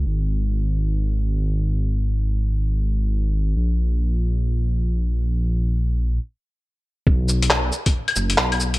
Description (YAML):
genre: future garage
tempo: free time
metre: none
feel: none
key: unclear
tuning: A4 = 439 Hz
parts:
  - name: dark detuned saw bass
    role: bass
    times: 0.0-8.8 s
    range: F#1 to B1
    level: -20 LUFS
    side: equal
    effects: sidechain pumping
  - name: electronic kick drum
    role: drums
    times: 7.1-7.9 s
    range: none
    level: -18 LUFS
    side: equal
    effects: none
  - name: lo-fi sampler-style drum kit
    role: drums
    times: 7.3-8.8 s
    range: cabasa, claves, handclaps, hi-hat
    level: -20 LUFS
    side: left 1 dB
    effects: none
room: little or no reverb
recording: low-pass filter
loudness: -19 LUFS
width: side -19 dB against mid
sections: 0.0-7.1 A section; 7.1-8.8 B section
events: filter sweep 0.0-7.1; stop 6.2-7.1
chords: none